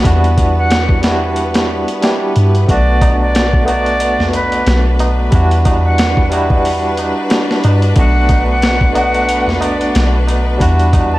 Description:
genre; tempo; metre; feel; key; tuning
trip hop; 91 BPM; 4/4; swing 57% on 16ths; B minor; A4 = 440 Hz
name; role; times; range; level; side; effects
barky tine electric piano; accompaniment; 0.0-11.2 s; G3 to G4; -17 LUFS; equal; tremolo, vintage 12-bit sampler grit
bright studio string section; sustained chords; 0.0-11.2 s; B3 to B4; -23 LUFS; left 2 dB; none
soft 808-style bass; bass; 0.0-11.2 s; B1 to G2; -14 LUFS; equal; none
boom bap sampler-style drum kit; drums; 0.0-11.1 s; hi-hat, kick drum, snare drum; -16 LUFS; equal; none
silver concert flute; melody; 0.6-11.2 s; B4 to A5; -20 LUFS; right 1 dB; tape echo
tabla; percussion; 2.7-11.2 s; none; -25 LUFS; right 1 dB; none
room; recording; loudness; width
studio ambience; vinyl crackle; -10 LUFS; side -17 dB against mid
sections
0.0-11.2 A section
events
none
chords
0.1 Em9; 2.7 Bm7; 5.3 Em9; 8.0 Bm7; 10.6 Em9

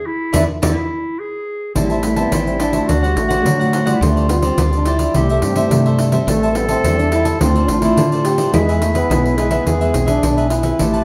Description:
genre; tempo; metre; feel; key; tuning
samba and choro; 106 BPM; 4/4; straight; unclear; A4 = 439 Hz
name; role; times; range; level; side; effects
warm clarinet; second line; 0.0-11.0 s; E4 to A4; -24 LUFS; equal; none
cavaquinho; accompaniment; 0.3-11.0 s; D4 to A5; -26 LUFS; equal; none
nylon-string guitar; accompaniment; 0.3-11.0 s; G2 to B4; -24 LUFS; equal; none
woody fretless electric bass; bass; 0.3-11.0 s; A1 to D3; -21 LUFS; equal; none
pandeiro; percussion; 0.3-11.0 s; none; -24 LUFS; equal; none
breathy trombone; melody; 1.8-11.0 s; F#3 to G4; -23 LUFS; equal; none
room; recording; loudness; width
wet large studio reverb, RT60 0.8 s; band playing live in one room; -16 LUFS; mono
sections
0.0-1.8 A section; 1.8-11.0 B section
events
band accent 0.0-1.8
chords
0.0 E7; 1.8 Am7; 2.9 D7; 4.0 G7sus4/D; 5.1 C6; 6.3 Am7; 7.4 Dm7; 8.5 E

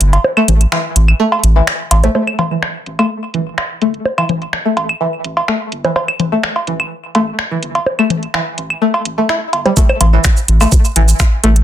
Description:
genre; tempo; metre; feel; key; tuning
minimal techno; 126 BPM; 4/4; straight; unclear; A4 = 440 Hz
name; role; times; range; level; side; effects
round analog bass; bass; 0.0-11.6 s; G1 to A1; -14 LUFS; equal; sidechain pumping, high-pass filter
garage drum kit; drums; 0.0-11.6 s; finger snaps, hi-hat, shaker; -18 LUFS; right 1 dB; soft clipping on snare, low-pass filter on snare, low-pass filter on hats, low-pass filter on perc
cowbell, bongos, claves and congas; percussion; 0.1-11.3 s; none; -17 LUFS; equal; digital delay
string-like resonator pluck; riff; 0.4-11.5 s; E3 to E4; -17 LUFS; left 1 dB; chorus, phaser, sidechain pumping, dub echo
electronic kick drum; drums; 9.8-11.3 s; none; -11 LUFS; equal; none
room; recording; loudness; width
moderate small room reverb, RT60 0.6 s; dense, heavily limited modern master; -12 LUFS; side -11 dB against mid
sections
0.0-2.1 A section; 2.1-9.8 B section; 9.8-11.6 C section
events
kick drops out 0.2-2.1; filter sweep on synth pluck 2.1-9.8; drop 9.8-11.6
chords
0.0 A5

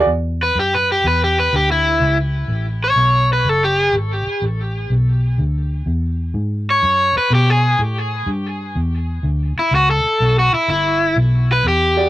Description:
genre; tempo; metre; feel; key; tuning
electric blues shuffle; 124 BPM; 4/4; swing 68% on 8ths; unclear; A4 = 440 Hz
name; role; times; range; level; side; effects
warm upright piano; accompaniment; 0.0-0.1, 12.0 s; F#4 to D5; -16 LUFS; right 4 dB; none
vintage muted fingered electric bass; bass; 0.0-12.1 s; F#1 to B2; -18 LUFS; equal; none
crunchy overdriven guitar; melody; 0.4-12.1 s; E4 to C#5; -16 LUFS; equal; digital delay
room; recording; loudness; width
moderate booth ambience, RT60 0.2 s; rough rehearsal-room recording; -14 LUFS; side -15 dB against mid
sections
0.1-12.1 A section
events
none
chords
0.1 Esus2; 2.0 Aadd9; 3.9 E9; 7.8 A9

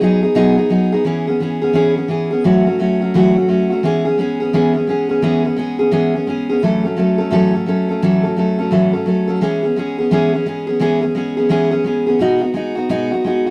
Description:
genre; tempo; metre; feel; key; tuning
rock; 172 BPM; 4/4; swing 64% on 8ths; E major; A4 = 440 Hz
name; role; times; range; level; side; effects
picked steel-string acoustic guitar; solo; 0.0-13.5 s; A2 to A4; -16 LUFS; equal; none
room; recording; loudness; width
moderate studio reverb, RT60 0.6 s; rough rehearsal-room recording; -16 LUFS; mono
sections
0.0-1.0 A section; 1.0-13.5 B section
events
none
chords
0.0 B6; 1.0 E6; 2.4 A6; 3.8 E6; 6.6 A6; 9.4 E6; 12.2 B6

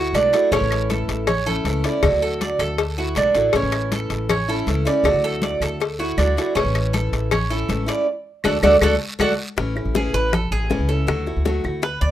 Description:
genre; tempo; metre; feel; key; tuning
latin, Cuban son and guajira; 159 BPM; 4/4; straight; A major; A4 = 440 Hz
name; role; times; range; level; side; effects
picked acoustic archtop guitar; accompaniment; 0.0-11.9 s; D3 to F#4; -26 LUFS; left 2 dB; none
Cuban tres; arpeggios; 0.0-12.1 s; C#4 to D5; -21 LUFS; right 3 dB; none
upright bass; bass; 0.0-12.1 s; A1 to D2; -24 LUFS; equal; none
claves; percussion; 0.1-11.8 s; none; -30 LUFS; right 2 dB; none
cowbell and bongos; percussion; 0.1-12.0 s; none; -24 LUFS; left 7 dB; none
guiro; percussion; 0.1-9.3 s; none; -36 LUFS; right 2 dB; none
congas; percussion; 0.2-12.1 s; none; -28 LUFS; left 2 dB; none
room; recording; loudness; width
moderate studio reverb, RT60 0.6 s; rough home demo mix; -18 LUFS; side -12 dB against mid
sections
0.0-9.6 A section; 9.6-12.1 B section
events
band accent 8.1-9.6; drum fill 8.8-9.6; Cuban tres solo 9.6-12.1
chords
0.0 Dadd9; 0.5 A; 2.0 Dadd9; 3.5 A; 5.1 Dadd9; 6.6 A; 8.1 D; 9.6 A; 11.1 Dadd9

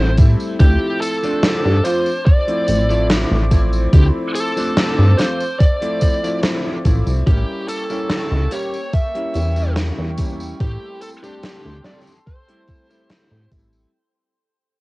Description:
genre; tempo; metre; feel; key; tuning
vaporwave; 72 BPM; 4/4; straight; D minor; A4 = 440 Hz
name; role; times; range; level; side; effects
bluesy overdriven lead guitar; melody; 0.0-13.5 s; G4 to E5; -23 LUFS; equal; distortion, tape echo
clear electric grand piano; accompaniment; 0.0-13.9 s; F3 to G4; -24 LUFS; equal; lush chorus, cassette tape
chorused synth bass; bass; 0.0-13.9 s; A1 to A2; -16 LUFS; equal; transformer saturation
electronic kick drum; drums; 0.2-13.7 s; none; -13 LUFS; equal; overdrive, cassette tape
gated 80s drum kit; drums; 0.2-13.9 s; hi-hat, snare drum, tambourine; -22 LUFS; equal; cassette tape
warbly tape-like pad; sustained chords; 1.0-13.9 s; Bb3 to D6; -32 LUFS; equal; chorus, built-in reverb, cassette tape
room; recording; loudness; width
moderate booth ambience, RT60 0.2 s; home recording on cassette; -15 LUFS; side -22 dB against mid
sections
0.0-13.9 A section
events
fade-out 5.0-13.9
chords
0.0 Am7; 0.6 Dm7; 7.3 A7b9; 10.6 Am7

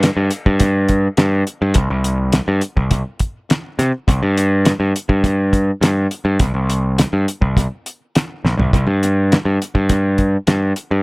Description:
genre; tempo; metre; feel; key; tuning
psychedelic rock; 103 BPM; 4/4; straight; unclear; A4 = 440 Hz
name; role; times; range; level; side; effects
growling picked electric bass; bass; 0.0-11.0 s; Bb1 to C3; -15 LUFS; equal; overdrive
cloth-damped thuddy drum kit; drums; 0.0-10.9 s; hi-hat, kick drum, snare drum, toms; -16 LUFS; equal; tape echo
room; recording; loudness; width
little or no reverb; echo-heavy mix; -14 LUFS; side -25 dB against mid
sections
0.0-11.0 A section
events
drum fill 8.4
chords
none

